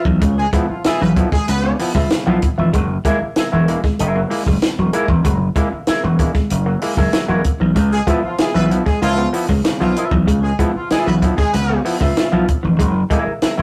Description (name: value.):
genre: funk.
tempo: 96 BPM.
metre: 4/4.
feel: straight.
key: unclear.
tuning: A4 = 440 Hz.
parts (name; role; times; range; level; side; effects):
electric guitar with an envelope filter; accompaniment; 0.0-13.6 s; F4 to Gb5; -24 LUFS; equal; none.
semi-hollow electric guitar; riff; 0.1-13.6 s; E3 to Cb4; -24 LUFS; equal; tremolo.
gritty slap bass; bass; 0.1-13.6 s; Fb1 to Db2; -21 LUFS; equal; overdrive.
compact cocktail drum kit; drums; 0.1-13.6 s; hi-hat, kick drum, snare drum; -21 LUFS; equal; none.
auto-wah clav; stabs; 0.2-13.6 s; Db3 to E4; -26 LUFS; equal; overdrive.
clear horn section; second line; 0.4-1.7, 7.9-11.8 s; F3 to Cb5; -25 LUFS; equal; none.
room: moderate studio reverb, RT60 0.6 s.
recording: rough rehearsal-room recording, warm saturation.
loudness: -17 LUFS.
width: mono.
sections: 0.0-13.6 A section.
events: none.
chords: 0.0 Db7#9; 2.7 Gb9; 7.8 Db7#9; 12.8 Gb9.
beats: | 0.22 0.85 1.48 2.11 | 2.74 3.37 3.99 4.62 | 5.25 5.88 6.51 7.14 | 7.76 8.39 9.02 9.65 | 10.28 10.91 11.54 12.16 | 12.79 13.42.